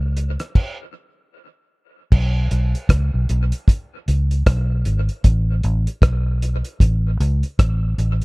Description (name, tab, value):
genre	roots reggae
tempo	77 BPM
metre	4/4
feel	swing 59% on 16ths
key	unclear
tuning	A4 = 440 Hz
part	vintage muted fingered electric bass	bass	0.0-8.2 s	G#1 to C#2	-18 LUFS	equal	none
part	cloth-damped thuddy drum kit	drums	0.2-8.2 s	crash cymbal, hi-hat, kick drum, rim click	-16 LUFS	equal	none
room	little or no reverb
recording	dark, warm production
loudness	-17 LUFS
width	side -29 dB against mid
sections	0.0-2.1 A section; 2.1-8.2 B section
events	stop 0.6-2.1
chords	none